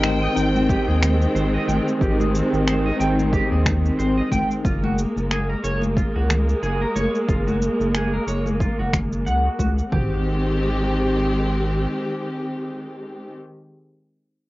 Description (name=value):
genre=sunset chillout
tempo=91 BPM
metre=4/4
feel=swing 57% on 16ths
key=Ab major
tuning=A4 = 439 Hz
part: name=tine electric piano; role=accompaniment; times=0.0-4.7 s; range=C4 to G5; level=-24 LUFS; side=moving between left 3 dB and right 3 dB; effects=medium stereo tremolo, auto-pan, analog delay
part: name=dark studio string section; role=sustained chords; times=0.0-13.3 s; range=Eb3 to G5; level=-24 LUFS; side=equal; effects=low-pass filter
part: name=clean electric guitar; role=arpeggios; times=0.0-10.2 s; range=F4 to G5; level=-29 LUFS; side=right 1 dB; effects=lush chorus, low-pass filter, analog delay
part: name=round analog bass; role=bass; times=0.0-11.9 s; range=Gb1 to Eb2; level=-23 LUFS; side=equal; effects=tube saturation
part: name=electronic finger snaps and cabasa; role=drums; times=0.0-9.9 s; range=none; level=-27 LUFS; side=equal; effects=overdrive
part: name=congas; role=percussion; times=0.0-9.7 s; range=none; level=-29 LUFS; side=left 2 dB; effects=none
part: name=deep house drum kit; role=drums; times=0.7-10.1 s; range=kick drum, toms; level=-24 LUFS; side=equal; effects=overdrive
room=moderate booth ambience, RT60 0.2 s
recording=home recording on cassette, nothing above 7.5 kHz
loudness=-19 LUFS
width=side -18 dB against mid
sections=0.0-9.9 A section; 9.9-12.6 B section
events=filter sweep on string section 0.0-9.9; filter sweep on clean electric guitar 0.0-9.9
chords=0.0 Abmaj7; 4.6 Gbmaj9; 9.9 Abmaj7